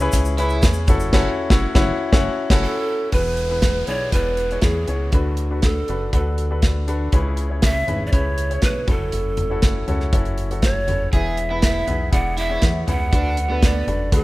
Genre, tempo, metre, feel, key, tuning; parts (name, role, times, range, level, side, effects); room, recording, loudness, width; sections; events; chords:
piano-driven pop; 120 BPM; 4/4; straight; F# minor; A4 = 440 Hz
clear baby grand piano; accompaniment; 0.0-14.2 s; C#3 to D5; -25 LUFS; left 3 dB
chorused synth bass; bass; 0.0-14.2 s; E1 to E2; -23 LUFS; equal
tube shaker; percussion; 0.0-1.1 s; -35 LUFS; left 4 dB
modern studio drum kit; drums; 0.1-14.2 s; crash cymbal, hi-hat, kick drum, snare drum, toms; -19 LUFS; equal
overdriven semi-hollow guitar; riff; 0.4-0.6, 11.1-13.8 s; B3 to G#4; -29 LUFS; right 3 dB
breathy large pan pipes; melody; 2.6-14.2 s; F#4 to F#5; -24 LUFS; right 1 dB
downlifter; sound effects; 3.1-7.1 s; -37 LUFS; equal
little or no reverb; rough home demo mix; -17 LUFS; side -18 dB against mid
0.0-3.1 A section; 3.1-14.2 B section
band accent 1.1-3.1
0.0 C#m7; 0.9 F#m7; 3.1 E; 5.1 Bm7; 7.1 C#m7; 8.9 F#m7; 11.1 E; 13.1 Bm7